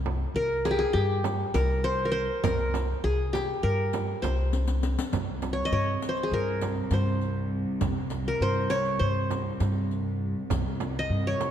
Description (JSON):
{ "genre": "Turkish makam ensemble", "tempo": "201 BPM (eighths)", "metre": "9/8", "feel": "straight", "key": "C makam kurdi", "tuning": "A4 = 440 Hz", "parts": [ { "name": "upright bass", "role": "bass", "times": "0.0-11.3 s", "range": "C2 to G2", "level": "-29 LUFS", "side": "equal", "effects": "none" }, { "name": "frame drum", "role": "percussion", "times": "0.1-11.5 s", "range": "none", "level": "-34 LUFS", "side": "right 6 dB", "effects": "none" }, { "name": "qanun", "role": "melody", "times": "0.4-11.5 s", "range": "G4 to Eb5", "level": "-28 LUFS", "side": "left 1 dB", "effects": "none" }, { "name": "riq", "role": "percussion", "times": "0.7-11.5 s", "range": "none", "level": "-38 LUFS", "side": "left 5 dB", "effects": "none" }, { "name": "warm symphonic cello section", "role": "drone", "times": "5.1-11.5 s", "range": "C2", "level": "-34 LUFS", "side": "right 1 dB", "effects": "none" } ], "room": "moderate scoring stage reverb, RT60 1.8 s", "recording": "dark, warm production", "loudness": "-25 LUFS", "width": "side -10 dB against mid", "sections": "0.0-5.1 A section; 5.1-11.5 B section", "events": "drum fill 4.5-5.1", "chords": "none", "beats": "0.05 0.35 0.65 0.95 1.25 1.54 1.84 2.14 | 2.44 2.74 3.04 3.33 3.63 3.93 4.23 4.53 4.83 | 5.13 5.42 5.72 6.02 6.32 6.62 6.92 7.22 7.52 | 7.82 8.11 8.41 8.71 9.01 9.31 9.61 9.91 10.21 | 10.51 10.80 11.10 11.40" }